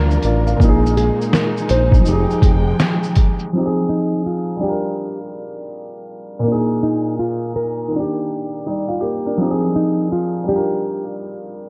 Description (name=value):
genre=lo-fi hip hop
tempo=82 BPM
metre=4/4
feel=swing 62% on 16ths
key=F dorian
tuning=A4 = 441 Hz
part: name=warm upright piano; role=accompaniment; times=0.0-11.7 s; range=Bb2 to F5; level=-22 LUFS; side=equal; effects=cassette tape
part: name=dark studio string section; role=sustained chords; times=0.0-3.5 s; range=F3 to G5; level=-28 LUFS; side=equal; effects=none
part: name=smooth synth bass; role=bass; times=0.0-2.7 s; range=F1 to D2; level=-20 LUFS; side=equal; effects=none
part: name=lo-fi sampler-style drum kit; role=drums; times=0.1-3.5 s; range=hi-hat, kick drum, shaker, snare drum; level=-19 LUFS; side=equal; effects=none
part: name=nylon-string guitar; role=melody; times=1.0-11.0 s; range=Eb4 to C5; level=-25 LUFS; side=equal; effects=tape echo
room=moderate church reverb, RT60 3.6 s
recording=dreamy mix soaked in reverb, cassette tape, low-pass filter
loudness=-18 LUFS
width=mono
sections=0.0-3.5 A section; 3.5-11.7 B section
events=none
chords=0.0 Gm7; 0.6 Bb7sus4; 2.1 Fm9; 3.5 Fm7; 4.6 Gm7; 6.5 Bb7sus4; 7.9 Ebmaj7; 9.4 Fm7; 10.5 Gm7